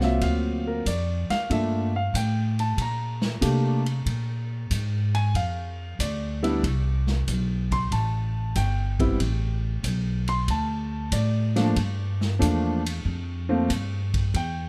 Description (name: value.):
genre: jazz piano trio.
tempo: 94 BPM.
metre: 4/4.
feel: swing 69% on 8ths.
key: unclear.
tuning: A4 = 440 Hz.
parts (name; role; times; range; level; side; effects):
warm concert grand piano; melody; 0.0-14.7 s; F3 to C6; -30 LUFS; equal; plate reverb.
upright bass; bass; 0.0-14.7 s; G1 to C3; -28 LUFS; equal; none.
swinging big-band drum kit; drums; 0.0-14.6 s; hi-hat, kick drum, ride cymbal, snare drum; -35 LUFS; equal; none.
room: light reverb.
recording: none.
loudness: -26 LUFS.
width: mono.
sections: 0.0-14.7 A section.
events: grand piano solo 0.0-14.7.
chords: 0.2 D7alt; 1.5 Gm9; 4.1 Bb7; 6.6 Cmaj7(no3); 9.2 Asus2; 10.5 D5; 11.8 Gm7.